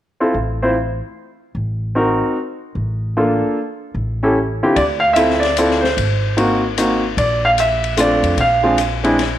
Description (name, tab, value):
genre	jazz piano trio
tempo	149 BPM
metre	3/4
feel	swing 65% on 8ths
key	D minor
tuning	A4 = 437 Hz
part	clear baby grand piano	melody	0.2-9.2 s	D3 to F5	-15 LUFS	equal	none
part	upright bass	bass	0.3-9.4 s	G#1 to F2	-22 LUFS	equal	none
part	open jazz drum kit	drums	4.8-9.3 s	hi-hat, kick drum, ride cymbal, snare drum	-24 LUFS	left 9 dB	none
room	moderate echo chamber reverb, RT60 1.4 s, studio reverb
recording	1960s-style stereo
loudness	-15 LUFS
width	side -12 dB against mid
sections	0.0-4.8 A section; 4.8-9.4 B section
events	none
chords	0.0 Am; 4.8 Dm9; 6.0 G#9; 7.2 Bbmaj7; 8.4 Bb7